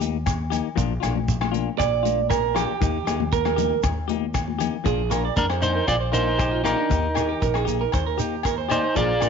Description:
highlife guitar band; 117 BPM; 4/4; straight; Bb mixolydian; A4 = 445 Hz
clean electric guitar; accompaniment; 0.0-9.3 s; Eb3 to G4; -30 LUFS; left 14 dB
upright bass; bass; 0.0-9.3 s; Bb1 to F2; -27 LUFS; left 1 dB
tight funk drum kit; drums; 0.0-9.3 s; hi-hat, kick drum, rim click; -29 LUFS; left 1 dB
congas; percussion; 0.0-4.7 s; -30 LUFS; left 16 dB
shekere; percussion; 0.0-9.3 s; -32 LUFS; right 7 dB
agogo bells; percussion; 0.3-9.3 s; -32 LUFS; left 10 dB
electric guitar at the edge of break-up; arpeggios; 1.8-9.3 s; D4 to D5; -25 LUFS; right 14 dB; slapback echo
electric guitar at the edge of break-up; melody; 5.4-9.3 s; D4 to D5; -24 LUFS; left 1 dB
light reverb, small room ambience; 1960s-style stereo with parts hard left and right, nothing above 7.5 kHz; -20 LUFS; side -6 dB against mid
0.0-4.9 A section; 4.9-9.3 B section
clean electric guitar solo 0.0-4.9
0.0 Eb; 0.8 Bb; 2.8 Eb; 4.9 Bb; 6.9 Eb
0.27 | 0.78 1.28 1.79 2.31 | 2.82 3.33 3.84 4.35 | 4.86 5.37 5.88 6.39 | 6.91 7.42 7.93 8.45 | 8.96

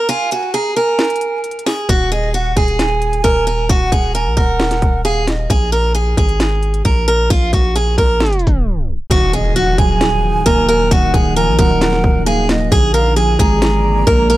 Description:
hip hop, trap; 133 BPM; 4/4; half-time; Eb harmonic minor; A4 = 439 Hz
picked steel-string acoustic guitar; melody; 0.0-14.4 s; F4 to Bb4; -17 LUFS; right 1 dB
breathy hollow jazz flute; second line; 0.0-5.5, 9.3-14.4 s; Eb5 to Bb5; -22 LUFS; right 3 dB; tape echo
trap drum kit; drums; 0.1-14.4 s; hi-hat, kick drum, snare drum; -16 LUFS; equal
long sustained 808-style bass; bass; 1.9-14.4 s; Eb1 to F2; -17 LUFS; equal
soft electric-piano-like synth keys; accompaniment; 9.1-14.4 s; D3 to Bb3; -20 LUFS; right 1 dB; chorus
glassy FM pad; sustained chords; 10.2-14.4 s; Eb3 to Gb5; -26 LUFS; left 1 dB; ensemble chorus, built-in reverb
impact; sound effects; 9.1-10.9 s; -24 LUFS; equal
little or no reverb; dry, gritty hardware recording, vinyl crackle, tape stop; -12 LUFS; side -16 dB against mid
0.0-9.1 A section; 9.1-14.4 B section
break 0.0-1.9; tape stop 8.2-9.1; impact 9.1-10.9
0.0 N.C.; 1.9 Ebm; 5.5 Bb7(no3); 9.1 Ebmadd9; 12.7 Bb7
| 0.09 0.54 0.99 1.44 | 1.89 2.34 2.79 3.24 | 3.69 4.14 4.60 5.05 | 5.50 5.95 6.40 6.85 | 7.30 7.75 8.21 8.66 | 9.11 9.56 10.01 10.46 | 10.91 11.36 11.81 12.27 | 12.72 13.17 13.62 14.07

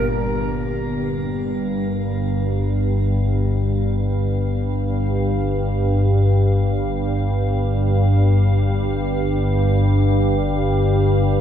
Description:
dark ambient drone; free time; A4 = 440 Hz
organ-like drone; drone; 0.0-11.4 s; G1 to Bb2; -17 LUFS; equal; ensemble chorus, built-in reverb
icy glass pad; texture; 0.0-11.4 s; Bb4 to F5; -32 LUFS; left 1 dB; chorus, built-in reverb, shimmer reverb
wet cathedral reverb, RT60 5.2 s; in a vast, echoing space; -17 LUFS; side -9 dB against mid
0.1-11.4 A section
fade-in on ambient pad 0.1-11.4
0.1 Fsus2/G
free time

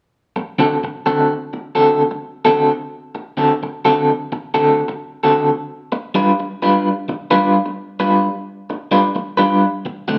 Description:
blues; 87 BPM; 4/4; swing 65% on 8ths; G major; A4 = 440 Hz
electric guitar through a small old amp; solo; 0.4-10.2 s; D3 to B4; -17 LUFS; equal; tremolo
moderate large studio reverb, RT60 1.1 s; band playing live in one room; -17 LUFS; mono
0.1-10.2 A section
0.1 D7; 5.7 G7
| 0.15 0.84 1.54 2.23 | 2.92 3.62 4.31 5.00 | 5.70 6.39 7.08 7.78 | 8.47 9.16 9.85

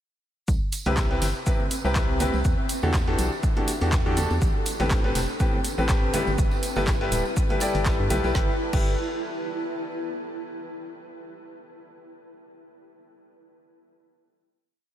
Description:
piano house; 122 BPM; 4/4; swing 55% on 16ths; G major; A4 = 442 Hz
organ-like FM bass; bass; 0.5-9.0 s; D1 to G2; -27 LUFS; equal; tube saturation, sidechain pumping
dusty soul sampler-style drum kit; drums; 0.5-8.2 s; hi-hat, shaker, snare drum; -40 LUFS; left 1 dB; high-pass filter on perc, high-pass filter on hats, high-pass filter on snare, high-pass filter on room
electronic kick drum; drums; 0.5-8.8 s; -24 LUFS; equal
tambourine and congas; percussion; 0.5-8.3 s; -36 LUFS; right 3 dB
granular cloud pad; texture; 1.3-10.3 s; C4 to A5; -34 LUFS; equal; built-in reverb, sidechain pumping
garage drum kit; drums; 0.7-8.8 s; crash cymbal, handclaps, hi-hat, snare drum; -34 LUFS; equal
bright upright piano; riff; 0.9-8.9 s; A2 to D5; -28 LUFS; left 1 dB; sidechain pumping, ping-pong delay
light reverb; -22 LUFS; side -11 dB against mid
0.5-8.3 groove; 8.3-10.3 final chord
0.5 Cmaj7; 2.4 Em11; 4.4 Am9; 6.1 G69
| 0.48 0.97 1.47 1.96 | 2.45 2.94 3.43 3.92 | 4.42 4.91 5.40 5.89 | 6.38 6.88 7.37 7.86 | 8.35 8.84 9.33 9.82

